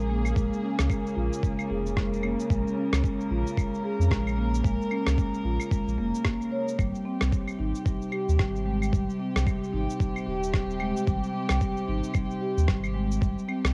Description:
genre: organic downtempo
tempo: 112 BPM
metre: 4/4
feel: swing 59% on 16ths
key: Bb dorian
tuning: A4 = 436 Hz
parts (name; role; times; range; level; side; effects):
- dark studio string section; sustained chords; 0.0-13.7 s; C3 to Bb4; -36 LUFS; equal; sidechain pumping
- warm sub bass; bass; 0.0-13.7 s; Eb1 to F2; -30 LUFS; equal; sidechain pumping
- marimba with soft mallets; arpeggios; 0.1-13.6 s; G3 to Db5; -32 LUFS; equal; tape echo
- electronic claves, shaker and rim click; drums; 0.2-13.7 s; none; -36 LUFS; equal; overdrive, cassette tape
- electronic kick drum; drums; 0.4-13.3 s; none; -30 LUFS; equal; overdrive, cassette tape
room: light reverb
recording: home recording on cassette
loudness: -27 LUFS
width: mono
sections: 0.0-13.7 A section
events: none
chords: 0.0 Bbm7; 6.8 Abmaj7

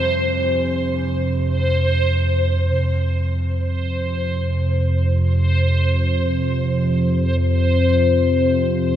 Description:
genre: dark ambient drone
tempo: free time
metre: none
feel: none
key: unclear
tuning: A4 = 441 Hz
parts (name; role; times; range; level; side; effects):
- clear concert grand piano; arpeggios; 0.0-9.0 s; G2 to E3; -42 LUFS; left 1 dB; none
- analog drone; drone; 0.0-9.0 s; F2 to C3; -18 LUFS; right 1 dB; chorus
- backwards swelling texture; texture; 0.0-9.0 s; C5; -22 LUFS; left 1 dB; built-in reverb, shimmer reverb
room: wet cathedral reverb, RT60 6.3 s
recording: in a vast, echoing space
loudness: -17 LUFS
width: side -10 dB against mid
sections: 0.0-2.7 A section; 2.7-9.0 B section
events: none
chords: 0.0 Cadd11/F

